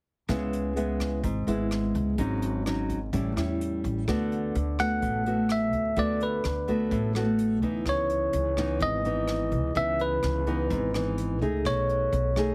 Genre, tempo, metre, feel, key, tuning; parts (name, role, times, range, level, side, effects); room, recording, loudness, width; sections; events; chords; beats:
bossa nova; 127 BPM; 4/4; straight; C# minor; A4 = 440 Hz
nylon-string guitar; accompaniment; 0.3-12.5 s; G#2 to G#4; -30 LUFS; equal
upright bass; bass; 0.3-12.5 s; G#1 to E2; -34 LUFS; equal
jazz brush drum kit; drums; 0.3-12.5 s; hi-hat, kick drum, rim click; -40 LUFS; equal
bell-like tine electric piano; melody; 4.8-12.5 s; B4 to F#5; -31 LUFS; equal; plate reverb
light reverb; heavily compressed radio sound, multiband compression; -27 LUFS; mono
0.3-4.1 A section; 4.1-12.5 B section
0.3 C#m7; 2.2 G#7sus4; 3.1 A7; 4.1 D6; 7.9 C#m9; 11.7 B13
| 0.29 0.76 1.24 1.71 | 2.19 2.66 3.13 3.60 | 4.08 4.55 5.03 5.50 | 5.97 6.45 6.92 7.39 | 7.86 8.34 8.81 9.28 | 9.76 10.23 10.70 11.18 | 11.65 12.12